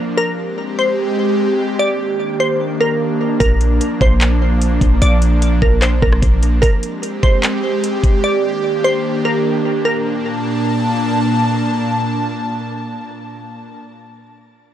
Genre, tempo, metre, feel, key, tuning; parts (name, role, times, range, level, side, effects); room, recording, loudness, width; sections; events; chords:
hip hop, atmospheric cloud-rap; 149 BPM; 4/4; half-time; Bb major; A4 = 439 Hz
glassy wavetable pluck; melody; 0.0-11.0 s; Bb4 to D5; -20 LUFS; equal; chorus, tape echo
airy breathy pad; sustained chords; 0.0-13.8 s; Bb2 to A5; -18 LUFS; right 1 dB; chorus, sidechain pumping
clean 808-style bass; bass; 3.4-6.6 s; Bb1; -14 LUFS; equal
smooth R&B drum kit; drums; 3.4-8.1 s; handclaps, hi-hat, kick drum, rim click; -16 LUFS; equal
little or no reverb; dry, gritty hardware recording; -14 LUFS; side -11 dB against mid
0.0-9.8 A section; 9.8-13.1 B section
0.2 Abmaj9; 1.8 Ebmaj7; 3.4 Bb; 6.6 Abmaj9; 8.2 Ebmaj7; 9.8 Bbmaj7